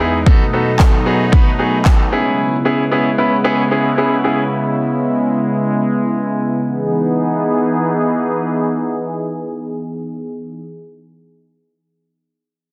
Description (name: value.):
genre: dance-pop.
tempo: 113 BPM.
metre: 4/4.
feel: straight.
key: E major.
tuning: A4 = 439 Hz.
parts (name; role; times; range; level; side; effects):
clear baby grand piano; accompaniment; 0.0-4.4 s; B3 to B4; -18 LUFS; equal; sidechain pumping, low-pass filter.
sweeping resonant pad; sustained chords; 0.0-10.6 s; E2 to G#4; -20 LUFS; equal; chorus, sidechain pumping, low-pass filter.
deep house drum kit; drums; 0.3-2.0 s; handclaps, kick drum, snare drum; -14 LUFS; equal; none.
room: moderate digital room reverb, RT60 1.3 s.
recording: dense, heavily limited modern master.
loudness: -16 LUFS.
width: mono.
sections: 0.0-6.6 A section; 6.6-10.9 B section.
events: filter sweep 0.0-6.6.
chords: 0.3 B7; 2.1 C#m7; 6.6 Emaj7.